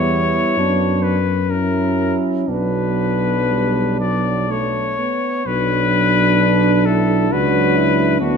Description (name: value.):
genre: classical, hymn-like piece for brass band.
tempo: 57-70 BPM.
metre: 3/4.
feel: rubato.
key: B minor.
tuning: A4 = 439 Hz.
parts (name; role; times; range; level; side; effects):
clear cornet; melody; 0.0-8.4 s; F#4 to D5; -20 LUFS; left 7 dB; none.
warm flugelhorn; second line; 0.0-8.4 s; D4 to F#4; -24 LUFS; right 7 dB; none.
mellow trombone; accompaniment; 0.0-8.4 s; F#3 to B3; -22 LUFS; right 5 dB; none.
warm euphonium; accompaniment; 0.0-8.4 s; B3 to D4; -22 LUFS; right 1 dB; none.
warm tuba; bass; 0.0-8.4 s; B1 to F#2; -21 LUFS; left 1 dB; none.
room: wet recital hall reverb, RT60 1.6 s.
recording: none.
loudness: -15 LUFS.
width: side -6 dB against mid.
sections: 0.0-5.5 A section; 5.5-8.4 A section.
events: none.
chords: 0.0 Em; 0.6 Bm/F#; 1.5 F#7; 2.5 Bm.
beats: 0.58 1.49 | 2.48 3.50 4.50 | 5.47 6.41 7.33 | 8.21.